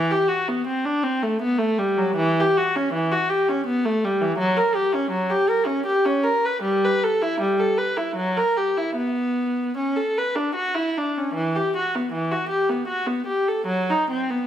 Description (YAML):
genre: classical, baroque-style suite movement for unaccompanied viola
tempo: 72-84 BPM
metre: 3/4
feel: rubato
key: B minor, E minor from 11.4 s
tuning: A4 = 440 Hz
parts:
  - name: rich viola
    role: solo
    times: 0.0-14.5 s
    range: E3 to B4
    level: -20 LUFS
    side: equal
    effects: none
room: moderate recital hall reverb, RT60 1.4 s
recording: minimal, uncompressed stereo recording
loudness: -20 LUFS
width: side -10 dB against mid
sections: 0.0-11.4 A section; 11.4-14.5 A section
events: none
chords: none